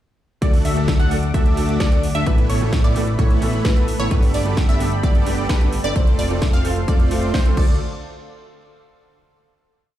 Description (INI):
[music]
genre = EDM, festival progressive house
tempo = 130 BPM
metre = 4/4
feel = straight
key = D major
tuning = A4 = 442 Hz
[part]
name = warm baby grand piano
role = accompaniment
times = 0.4-7.8 s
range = G2 to A4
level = -27 LUFS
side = right 4 dB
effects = sidechain pumping, digital delay
[part]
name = lush unison pad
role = sustained chords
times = 1.0-7.8 s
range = A4 to D6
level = -32 LUFS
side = equal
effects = chorus, sidechain pumping
[part]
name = wide unison pluck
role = arpeggios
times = 0.4-7.7 s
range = B4 to F#5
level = -28 LUFS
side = equal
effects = sidechain pumping, digital delay
[part]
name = dense compressed supersaw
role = riff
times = 0.4-7.7 s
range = A3 to F#5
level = -26 LUFS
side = equal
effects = sidechain pumping, digital delay
[part]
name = fat analog bass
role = bass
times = 0.4-7.8 s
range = F1 to A2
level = -22 LUFS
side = left 1 dB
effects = sidechain pumping
[part]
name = electronic kick drum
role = drums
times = 0.4-7.7 s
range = none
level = -17 LUFS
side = equal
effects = overdrive
[part]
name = house drum kit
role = drums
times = 0.4-7.7 s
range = crash cymbal, hi-hat, snare drum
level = -31 LUFS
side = equal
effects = none
[sound]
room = digital ambience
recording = played on a big sound system in a bare room, large studio reverb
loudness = -16 LUFS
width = side -12 dB against mid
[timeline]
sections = 0.4-7.8 drop; 7.8-9.7 final hit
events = drop 0.4-7.8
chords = 0.4 D; 2.3 Asus2; 4.1 Gadd9; 6.0 F; 7.6 D; 7.8 N.C.